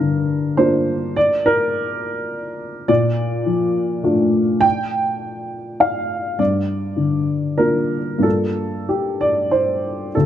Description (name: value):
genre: neoclassical minimalist piano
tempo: 92-105 BPM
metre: 3/4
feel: rubato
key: G minor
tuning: A4 = 440 Hz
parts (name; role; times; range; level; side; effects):
- dark upright piano; solo; 0.0-10.3 s; D2 to G5; -17 LUFS; equal; none
room: light reverb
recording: close, detailed microphones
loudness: -17 LUFS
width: side -10 dB against mid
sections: 0.0-10.1 A section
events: none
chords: 0.0 Gm7; 2.9 Bbmaj7; 6.4 Gm7